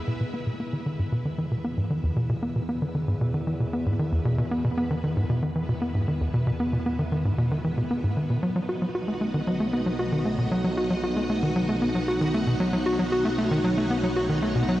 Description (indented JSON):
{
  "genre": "ambient, sequencer-driven space music",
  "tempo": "115 BPM",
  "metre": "4/4",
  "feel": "straight",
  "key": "unclear",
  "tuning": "A4 = 439 Hz",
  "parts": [
    { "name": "string machine, full ensemble", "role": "sustained chords", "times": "0.0-14.8 s", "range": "G#3 to F#5", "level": "-32 LUFS", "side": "equal", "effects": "ensemble chorus" },
    { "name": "tight sequencer bass", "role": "riff", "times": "0.0-14.8 s", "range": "E2 to F#4", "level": "-24 LUFS", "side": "equal", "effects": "tape echo" },
    { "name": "analog drone", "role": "bass", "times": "1.2-14.8 s", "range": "B1 to E2", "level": "-35 LUFS", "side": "equal", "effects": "chorus" }
  ],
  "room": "moderate huge ambient reverb, RT60 8.4 s",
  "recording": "worn, warbling old tape, cassette tape, warbly pitch drift",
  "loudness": "-23 LUFS",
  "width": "side -15 dB against mid",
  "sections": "0.0-14.8 A section",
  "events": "fade-in on string machine 0.0-14.8",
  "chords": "0.0 E; 8.3 B"
}